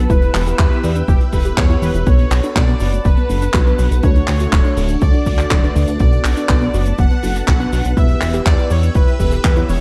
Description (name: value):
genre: italo disco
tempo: 122 BPM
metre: 4/4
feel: straight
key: B minor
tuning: A4 = 440 Hz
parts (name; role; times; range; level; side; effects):
- analog synth brass; melody; 0.0-9.8 s; G4 to F#5; -27 LUFS; equal; chorus, tape echo
- string machine, full ensemble; sustained chords; 0.0-9.8 s; D4 to E6; -30 LUFS; equal; ensemble chorus
- warbly dusty pluck; arpeggios; 0.0-9.7 s; B2 to E5; -29 LUFS; equal; chorus, cassette tape, tape echo
- bell-like tine electric piano; stabs; 0.0-9.8 s; A3 to D5; -28 LUFS; equal; analog chorus
- chorused synth bass; bass; 0.0-9.8 s; D1 to E2; -20 LUFS; equal; tube saturation
- damped 70s drum kit; drums; 0.1-9.8 s; cabasa, handclaps, hi-hat; -26 LUFS; equal; studio reverb, gated reverb
- electronic kick drum; drums; 0.1-9.5 s; none; -17 LUFS; equal; studio reverb
room: small room ambience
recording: none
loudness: -15 LUFS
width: mono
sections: 0.0-9.8 A section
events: none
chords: 0.1 Em; 2.1 Bm7; 4.0 D; 6.0 Bm7; 8.0 Em